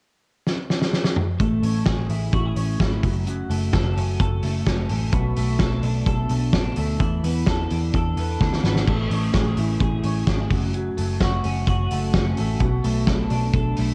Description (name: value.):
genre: jangly indie pop.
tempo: 129 BPM.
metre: 4/4.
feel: straight.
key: A major.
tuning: A4 = 440 Hz.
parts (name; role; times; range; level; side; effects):
loose indie drum kit; drums; 0.5-13.9 s; crash cymbal, hi-hat, kick drum, snare drum, toms; -26 LUFS; equal; cassette tape.
twelve-string electric guitar; arpeggios; 1.4-13.9 s; F#2 to A4; -28 LUFS; equal; lush chorus, tape echo.
vintage muted picked electric bass; bass; 1.4-13.9 s; F#1 to E2; -26 LUFS; equal; none.
room: light reverb, small room ambience.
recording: home recording on cassette.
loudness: -22 LUFS.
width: mono.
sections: 0.0-1.4 A section; 1.4-13.9 B section.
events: drum fill 0.5-1.4, 8.4-8.9.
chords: 0.0 N.C.; 1.4 Amaj7; 3.0 F#m; 5.1 Bm7; 7.0 E7sus4; 8.9 Amaj7; 10.5 F#m; 12.6 Bm7.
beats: 0.01 0.47 0.94 | 1.40 1.87 2.34 2.80 | 3.27 3.73 4.20 4.67 | 5.13 5.60 6.06 6.53 | 7.00 7.46 7.93 8.40 | 8.86 9.33 9.80 10.26 | 10.73 11.20 11.67 12.13 | 12.60 13.07 13.54.